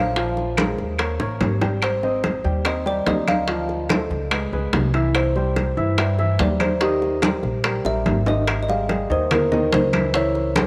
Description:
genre	Afro-Cuban jazz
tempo	144 BPM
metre	4/4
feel	straight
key	unclear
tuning	A4 = 438 Hz
part	kalimba	melody	0.0-10.5 s	G4 to F5	-27 LUFS	equal	none
part	warm baby grand piano	accompaniment	0.0-10.7 s	Eb3 to G5	-28 LUFS	equal	none
part	upright bass	bass	0.0-10.7 s	Ab1 to G2	-27 LUFS	equal	none
part	bongos	percussion	0.2-10.7 s	none	-32 LUFS	equal	none
part	congas	percussion	0.2-10.7 s	none	-28 LUFS	equal	none
part	timbales	percussion	0.2-10.7 s	none	-31 LUFS	equal	none
part	claves	percussion	0.6-10.7 s	none	-34 LUFS	equal	none
room	moderate echo chamber reverb, RT60 2.2 s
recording	none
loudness	-21 LUFS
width	mono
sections	0.0-8.5 A section; 8.5-10.7 B section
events	drum fill 1.2-1.8, 7.9-8.5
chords	0.2 Bb5; 1.0 Eb7; 1.8 Abmaj7; 3.5 Dm7; 4.3 Db7; 5.1 Cmaj7; 6.8 Eb; 8.5 Abmaj13; 10.1 Dbm7

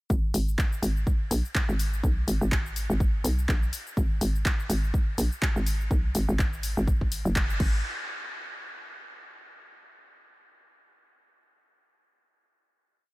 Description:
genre	bass house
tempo	124 BPM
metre	4/4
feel	swing 57% on 16ths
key	G# minor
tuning	A4 = 443 Hz
part	hollow knocking FM bass	bass	0.1-7.8 s	F#1 to B1	-26 LUFS	equal	tube saturation, sidechain pumping
part	electronic kick drum	drums	0.1-7.7 s	none	-26 LUFS	equal	none
part	house drum kit	drums	0.1-7.7 s	crash cymbal, handclaps, hi-hat, shaker	-34 LUFS	left 1 dB	none
room	digital ambience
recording	none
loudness	-24 LUFS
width	side -21 dB against mid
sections	0.1-7.8 drop; 7.8-9.8 final hit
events	drop 0.1-7.8; band accent 7.4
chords	none

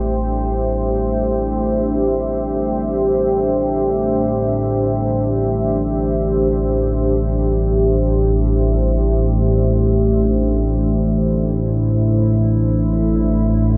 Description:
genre	dark ambient drone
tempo	free time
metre	none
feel	none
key	A minor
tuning	A4 = 439 Hz
part	deep dark ambient pad	sustained chords	0.0-13.8 s	A3 to F#5	-21 LUFS	equal	chorus, built-in reverb
part	gamelan-type bronze metallophone	arpeggios	0.0-5.0 s	none	barely audible	none	none
part	analog drone	drone	0.0-13.8 s	A1 to A2	-21 LUFS	equal	chorus
room	wet cathedral reverb, RT60 5.5 s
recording	none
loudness	-18 LUFS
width	mono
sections	0.0-13.8 A section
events	filter sweep on synth drone 0.0-13.8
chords	0.0 Am; 10.3 D7

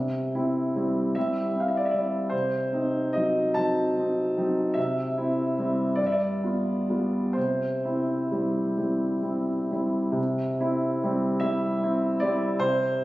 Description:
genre	classical, romantic nocturne for solo piano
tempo	40-52 BPM (dotted quarters)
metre	6/8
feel	rubato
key	C major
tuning	A4 = 440 Hz
part	warm concert grand piano	solo	0.0-13.0 s	G2 to A5	-24 LUFS	equal	none
room	moderate concert hall reverb, RT60 1.9 s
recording	recorded on a phone in the room, studio reverb, compression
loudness	-24 LUFS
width	side -17 dB against mid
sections	0.0-10.2 A section; 10.2-13.0 A section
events	none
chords	0.0 C; 2.3 Cdim7; 4.8 C; 6.0 G7; 7.4 C

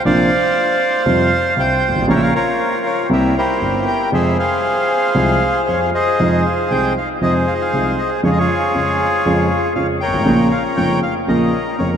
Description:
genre	tango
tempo	118 BPM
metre	4/4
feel	rubato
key	F harmonic minor, F minor from 6.2 s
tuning	A4 = 439 Hz
part	bandoneon	melody	0.0-12.0 s	E4 to G5	-16 LUFS	equal	none
part	dark concert grand piano	accompaniment	0.1-12.0 s	F1 to F4	-17 LUFS	equal	none
room	wet huge ambient reverb, RT60 8.8 s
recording	in a vast, echoing space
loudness	-14 LUFS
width	side -8 dB against mid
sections	0.0-6.2 A section; 6.2-12.0 B section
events	none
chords	0.1 Bbadd9; 1.1 Fsus2; 2.1 Bbm; 3.1 C7; 4.1 Fm; 6.2 Fm7; 8.2 Db/F; 10.3 Bbm

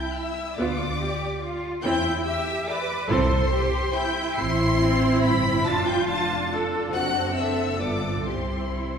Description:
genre	quick classical-period movement for string orchestra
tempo	141 BPM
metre	3/4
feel	rubato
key	C major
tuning	A4 = 443 Hz
part	warm chamber violin section	melody	0.0-9.0 s	C6 to C7	-31 LUFS	left 2 dB	none
part	rich chamber violin section	second line	0.0-9.0 s	C5 to C6	-30 LUFS	left 3 dB	none
part	clear studio cello section	bass	0.0-8.9 s	C4 to B4	-29 LUFS	right 1 dB	none
part	rich chamber viola section	accompaniment	0.6-9.0 s	B3 to F4	-26 LUFS	equal	none
part	rich studio double bass section	bass	0.6-9.0 s	F1 to E2	-28 LUFS	right 1 dB	none
room	wet concert hall reverb, RT60 2.0 s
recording	heard from further back in the room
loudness	-22 LUFS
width	side -7 dB against mid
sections	0.0-9.0 A section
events	none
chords	0.0 C (rootless); 0.6 G7/D; 1.8 C/E; 3.1 C; 4.4 Am; 5.7 Dm/F; 6.9 D7/F#; 7.8 G7; 8.3 C

